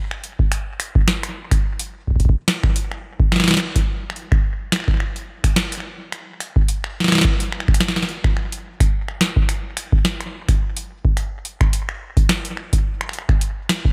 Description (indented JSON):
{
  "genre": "IDM",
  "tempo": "107 BPM",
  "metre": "4/4",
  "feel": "swing 56% on 16ths",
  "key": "none",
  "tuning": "none",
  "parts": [
    { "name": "booming analog drum machine", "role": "drums", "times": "0.1-13.8 s", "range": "finger snaps, hi-hat, snare drum", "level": "-24 LUFS", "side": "equal", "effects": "analog delay" },
    { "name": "electronic kick drum", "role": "drums", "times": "0.4-13.9 s", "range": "none", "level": "-20 LUFS", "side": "equal", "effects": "none" }
  ],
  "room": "light reverb",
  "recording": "none",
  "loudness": "-20 LUFS",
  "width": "mono",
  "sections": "0.0-13.9 A section",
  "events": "none",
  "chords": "none",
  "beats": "0.52 1.08 | 1.64 2.20 2.76 3.32 | 3.88 4.44 5.00 5.56 | 6.12 6.68 7.25 7.81 | 8.37 8.93 9.49 10.05 | 10.61 11.17 11.73 12.29 | 12.85 13.41"
}